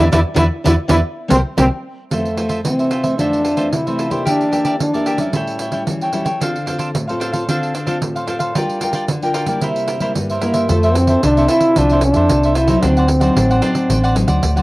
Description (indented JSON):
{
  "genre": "samba and choro",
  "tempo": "112 BPM",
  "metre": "4/4",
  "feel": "straight",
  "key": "F major",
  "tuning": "A4 = 441 Hz",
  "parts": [
    { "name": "breathy trombone", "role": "melody", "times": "0.0-5.3, 10.4-14.4 s", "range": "A3 to E4", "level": "-17 LUFS", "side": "equal", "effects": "cassette tape, plate reverb" },
    { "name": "cavaquinho", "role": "accompaniment", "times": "0.0-14.6 s", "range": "D4 to G5", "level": "-22 LUFS", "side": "right 1 dB", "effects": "cassette tape, plate reverb" },
    { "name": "nylon-string guitar", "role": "accompaniment", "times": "0.0-14.6 s", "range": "F2 to Bb4", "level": "-22 LUFS", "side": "left 2 dB", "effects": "cassette tape, plate reverb" },
    { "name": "vintage muted fingered electric bass", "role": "bass", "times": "0.0-1.7, 10.7-14.6 s", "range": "A1 to F2", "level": "-16 LUFS", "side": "equal", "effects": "tube saturation" },
    { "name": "pandeiro", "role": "percussion", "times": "0.1-14.6 s", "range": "none", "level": "-21 LUFS", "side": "right 2 dB", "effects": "none" }
  ],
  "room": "moderate small room reverb, RT60 0.5 s",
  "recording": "home recording on cassette",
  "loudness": "-14 LUFS",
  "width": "side -19 dB against mid",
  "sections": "0.0-2.1 A section; 2.1-10.7 B section; 10.7-14.6 C section",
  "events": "band accent 0.0-2.1",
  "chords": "0.0 E5; 1.1 C5; 2.1 Fmaj7; 4.3 Em7b5; 5.3 A7; 6.4 Dm7; 8.6 Gm7; 9.6 C7; 10.7 Fmaj7; 12.8 D7b9"
}